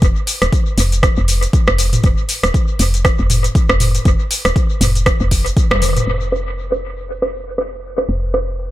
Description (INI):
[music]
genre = afro house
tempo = 119 BPM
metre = 4/4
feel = swing 58% on 16ths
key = unclear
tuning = A4 = 442 Hz
[part]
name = woody FM bass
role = bass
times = 0.0-8.7 s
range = Eb1 to F1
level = -18 LUFS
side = equal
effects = tube saturation, sidechain pumping
[part]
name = afro-pop drum kit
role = drums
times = 0.0-8.7 s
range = hi-hat, rim click, shaker, toms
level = -18 LUFS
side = equal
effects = overdrive, low-pass filter on hats, low-pass filter on perc, low-pass filter on snare, low-pass filter on toms, low-pass filter on room, dub echo
[part]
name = electronic kick drum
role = drums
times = 0.0-5.7 s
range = none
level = -14 LUFS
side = equal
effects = overdrive
[sound]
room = light reverb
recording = echo-heavy mix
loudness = -13 LUFS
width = side -15 dB against mid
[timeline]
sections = 0.0-6.1 A section; 6.1-8.7 B section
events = drum fill 5.7-6.1; band accent 5.7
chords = none